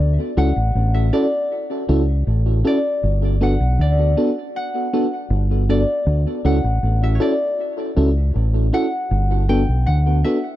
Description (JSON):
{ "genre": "lovers rock reggae", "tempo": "79 BPM", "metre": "4/4", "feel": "straight", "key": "D major", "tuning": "A4 = 439 Hz", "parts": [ { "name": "concert harp", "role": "melody", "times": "0.0-10.6 s", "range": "C#5 to G5", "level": "-25 LUFS", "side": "left 1 dB", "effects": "tape echo" }, { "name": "fingered electric bass", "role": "bass", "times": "0.0-10.2 s", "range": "G1 to D2", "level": "-17 LUFS", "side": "equal", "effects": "none" }, { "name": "mellow FM electric piano", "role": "accompaniment", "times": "0.4-10.4 s", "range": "B3 to A4", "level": "-22 LUFS", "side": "equal", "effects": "chorus, tape echo" } ], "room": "small room ambience", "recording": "dry, close 1970s-style studio recording", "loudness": "-16 LUFS", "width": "side -14 dB against mid", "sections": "0.0-10.6 A section", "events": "none", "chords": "0.0 Dmaj7; 3.0 Gmaj7; 6.1 Dmaj7; 9.1 Gmaj7" }